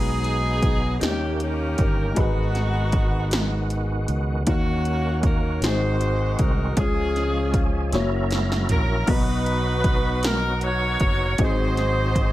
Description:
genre	slow gospel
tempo	52 BPM (dotted quarters)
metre	6/8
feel	straight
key	unclear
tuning	A4 = 440 Hz
part	bright saxophone section	melody	0.0-12.3 s	A#3 to C#5	-27 LUFS	equal	none
part	dark upright piano	accompaniment	0.0-12.3 s	G#2 to A#5	-29 LUFS	left 4 dB	none
part	tonewheel organ	sustained chords	0.0-12.3 s	D#3 to A#4	-30 LUFS	right 2 dB	slow rotary speaker, overdrive, chorus vibrato
part	fingered electric bass	bass	0.0-12.3 s	F#1 to D#2	-25 LUFS	equal	none
part	80s electronic pad drums	drums	0.2-12.3 s	crash cymbal, hi-hat, kick drum, snare drum, toms	-24 LUFS	equal	gated reverb on snare and toms
room	digital ambience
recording	none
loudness	-20 LUFS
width	side -15 dB against mid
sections	0.0-12.3 A section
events	drum fill 7.9-9.1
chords	0.0 B6; 1.0 D#7; 2.2 G#m7; 4.5 D#m7; 5.6 G#7; 6.8 C#; 7.9 F#7; 9.1 Bmaj7; 11.4 G#7

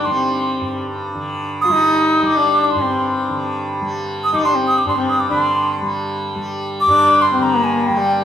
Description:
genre	indian classical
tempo	138 BPM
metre	3/4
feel	straight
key	G raga bhairavi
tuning	A4 = 442 Hz
part	bright bansuri	melody	0.0-8.2 s	G5 to Eb6+21c	-16 LUFS	right 1 dB	none
part	rich sarangi	second line	0.0-8.2 s	G3 to F4+20c	-20 LUFS	left 3 dB	none
part	tanpura	drone	0.0-8.2 s	G2 to G3	-23 LUFS	equal	none
room	moderate recital hall reverb, RT60 1.4 s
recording	minimal, uncompressed stereo recording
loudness	-15 LUFS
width	side -10 dB against mid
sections	0.0-5.3 A section; 5.3-8.2 B section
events	speeding up 0.0-8.2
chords	none

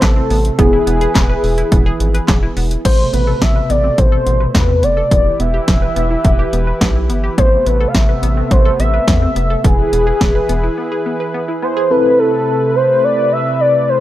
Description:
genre	synth-pop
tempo	106 BPM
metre	4/4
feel	straight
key	A minor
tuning	A4 = 439 Hz
part	warm velvety synth lead	melody	0.0-14.0 s	G#4 to F5	-16 LUFS	left 1 dB	chorus, analog delay
part	mellow FM electric piano	accompaniment	0.0-2.8, 11.9-14.0 s	B3 to A4	-21 LUFS	equal	chorus, tremolo
part	warm analog pad	sustained chords	0.0-14.0 s	B2 to B4	-21 LUFS	right 1 dB	chorus
part	analog pluck	arpeggios	0.0-11.9 s	B3 to B4	-25 LUFS	left 1 dB	chorus, analog delay
part	rubbery square bass	bass	0.0-10.7 s	E1 to E2	-17 LUFS	equal	none
part	punchy analog drum machine	drums	0.0-10.6 s	crash cymbal, handclaps, hi-hat, kick drum, snare drum	-14 LUFS	equal	none
room	little or no reverb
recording	dry, gritty hardware recording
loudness	-11 LUFS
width	side -14 dB against mid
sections	0.0-2.9 A section; 2.9-11.9 B section; 11.9-14.0 A section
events	break 10.8-11.9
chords	0.0 Amadd9; 0.6 E; 2.9 Amadd9; 5.1 Em; 7.4 Amadd9; 9.6 E; 11.9 Amadd9

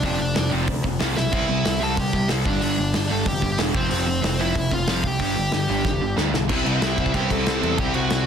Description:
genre	punk rock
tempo	186 BPM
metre	4/4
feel	straight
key	unclear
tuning	A4 = 440 Hz
part	dark smooth lead guitar	melody	0.0-8.3 s	C4 to A5	-26 LUFS	equal	overdrive, digital delay
part	raw garage guitar	riff	0.0-8.3 s	F2 to C4	-27 LUFS	right 14 dB	overdrive
part	sludgy distorted guitar	riff	0.0-8.3 s	F2 to C4	-27 LUFS	left 11 dB	overdrive
part	growling picked electric bass	bass	0.0-8.3 s	E1 to E2	-27 LUFS	equal	overdrive
part	loose indie drum kit	drums	0.0-8.2 s	crash cymbal, hi-hat, kick drum, snare drum	-25 LUFS	equal	none
part	cranked stack guitar	riff	6.5-8.3 s	C3 to E4	-29 LUFS	equal	overdrive
room	little or no reverb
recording	dense, heavily limited modern master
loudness	-19 LUFS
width	side -8 dB against mid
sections	0.0-6.5 A section; 6.5-8.3 B section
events	drum fill 1.2, 5.8-6.5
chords	0.0 F5; 1.3 C; 2.5 G5; 3.7 F5; 5.2 G5; 6.5 C

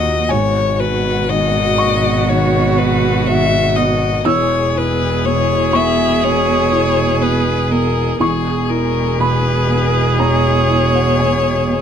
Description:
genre	neoclassical piano and strings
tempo	61 BPM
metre	4/4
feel	rubato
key	unclear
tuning	A4 = 438 Hz
part	rich violin	melody	0.0-11.8 s	G#4 to E5	-18 LUFS	left 6 dB	none
part	clear cello	second line	0.0-11.8 s	A#2 to B2	-22 LUFS	right 8 dB	none
part	felt-muted upright piano	accompaniment	0.0-11.8 s	E2 to E6	-21 LUFS	right 1 dB	none
part	rich viola	accompaniment	0.0-11.8 s	F#4 to G#4	-21 LUFS	right 2 dB	none
part	clear chamber string section	sustained chords	0.0-11.8 s	D#3 to G#4	-26 LUFS	left 2 dB	none
part	rich double bass	bass	0.0-11.8 s	E1 to D#2	-20 LUFS	equal	none
room	light reverb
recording	none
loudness	-13 LUFS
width	side -8 dB against mid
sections	0.0-11.8 A section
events	none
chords	0.3 G#m7; 4.3 E6

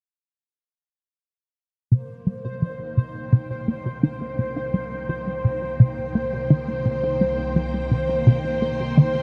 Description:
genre	ambient, sequencer-driven space music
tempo	85 BPM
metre	4/4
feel	straight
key	C minor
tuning	A4 = 440 Hz
part	string machine, full ensemble	sustained chords	1.9-9.2 s	Eb3 to G5	-34 LUFS	equal	phaser, ensemble chorus, shimmer reverb
part	resonant blip pluck	riff	1.9-9.1 s	C3 to Bb3	-23 LUFS	equal	phaser, analog delay
part	fat analog bass	bass	1.9-9.2 s	C2	-37 LUFS	equal	none
part	pulsing gated texture	texture	2.3-9.2 s	C5	-30 LUFS	equal	chorus, built-in reverb, shimmer reverb
room	moderate huge ambient reverb, RT60 7.4 s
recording	none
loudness	-23 LUFS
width	mono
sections	1.9-9.2 A section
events	fade-in on string machine 1.9-9.2; fade-in on analog synth bass 1.9-9.2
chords	1.9 Cm7

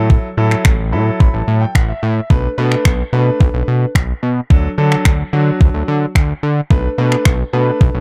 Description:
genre	dance-pop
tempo	109 BPM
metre	4/4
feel	straight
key	B minor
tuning	A4 = 441 Hz
part	clear concert grand piano	accompaniment	0.0-8.0 s	F#3 to B5	-22 LUFS	equal	sidechain pumping
part	fat analog bass	bass	0.0-8.0 s	A1 to D3	-18 LUFS	equal	sidechain pumping
part	crisp 8-bit digital drum machine	drums	0.1-7.9 s	finger snaps, kick drum	-14 LUFS	equal	overdrive
room	digital ambience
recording	dark, warm production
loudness	-15 LUFS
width	mono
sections	0.0-8.0 A section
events	grand piano fill 0.7-2.3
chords	0.0 F#m7/A; 2.3 Bm7; 4.5 D; 6.7 Bm7

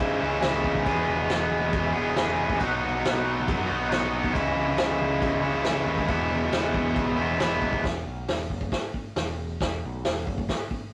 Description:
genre	garage rock duo or trio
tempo	138 BPM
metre	4/4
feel	straight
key	E major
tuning	A4 = 440 Hz
part	overdriven combo organ	sustained chords	0.0-7.8 s	F#4 to B5	-41 LUFS	equal	none
part	biting overdriven guitar	riff	0.0-7.8 s	E2 to G#4	-27 LUFS	equal	none
part	growling picked electric bass	bass	0.0-10.5 s	E1 to G#2	-36 LUFS	equal	overdrive, tube saturation
part	vintage drum kit	drums	0.0-10.8 s	crash cymbal, hi-hat, kick drum, snare drum	-32 LUFS	equal	none
room	moderate studio reverb, RT60 0.6 s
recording	rough rehearsal-room recording, tube saturation, cassette tape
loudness	-26 LUFS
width	mono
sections	0.0-7.8 A section; 7.8-10.9 B section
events	transistor combo organ fill 7.2-7.8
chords	0.0 C#m; 0.9 E; 2.6 B; 4.3 C#m; 6.1 E; 7.8 E5

